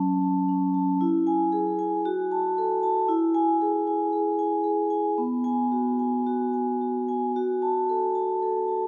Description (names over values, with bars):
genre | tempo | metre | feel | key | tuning
classical, contemporary piece for solo vibraphone | 114 BPM | 4/4 | rubato | F# minor | A4 = 441 Hz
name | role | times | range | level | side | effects
vibraphone with medium mallets | solo | 0.0-8.9 s | F#3 to A5 | -25 LUFS | equal | none
room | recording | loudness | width
wet church reverb, RT60 3.7 s | none | -25 LUFS | mono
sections
0.0-8.9 A section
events
none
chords
0.0 F#m; 1.0 E; 2.1 F#m; 3.1 E; 5.2 B5; 7.4 F#m